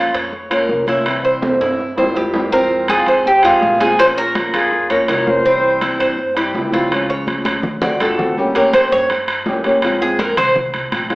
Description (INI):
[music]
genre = latin, Cuban son and guajira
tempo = 164 BPM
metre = 4/4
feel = straight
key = unclear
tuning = A4 = 440 Hz
[part]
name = flamenco guitar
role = accompaniment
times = 0.0-11.2 s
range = C3 to G4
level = -19 LUFS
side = equal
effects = none
[part]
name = Cuban tres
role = arpeggios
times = 0.0-10.6 s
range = C4 to D5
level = -18 LUFS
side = right 1 dB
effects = none
[part]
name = upright bass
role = bass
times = 0.0-11.2 s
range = G1 to G2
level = -33 LUFS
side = equal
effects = none
[part]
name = congas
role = percussion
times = 0.1-11.2 s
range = none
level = -26 LUFS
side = equal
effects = none
[part]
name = timbales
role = percussion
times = 0.1-11.2 s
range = none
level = -21 LUFS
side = right 1 dB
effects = none
[part]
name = Cuban tres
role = melody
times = 2.5-4.9 s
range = F4 to C5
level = -14 LUFS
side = equal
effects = plate reverb
[part]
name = bright reedy silver concert flute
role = second line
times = 4.5-6.0 s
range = Ab4 to Db5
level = -19 LUFS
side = left 1 dB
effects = none
[sound]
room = wet large studio reverb, RT60 0.9 s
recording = heard from further back in the room, AM radio sound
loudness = -13 LUFS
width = side -22 dB against mid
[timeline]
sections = 0.0-8.4 A section; 8.4-11.2 B section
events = drum fill 1.4-2.5, 7.3-8.4; Cuban tres solo 8.4-11.2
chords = 0.0 Bbm; 1.1 C; 2.5 Fm; 4.0 Bbm; 5.5 C; 6.9 Db; 7.6 D7; 8.4 Gdim; 9.8 Fm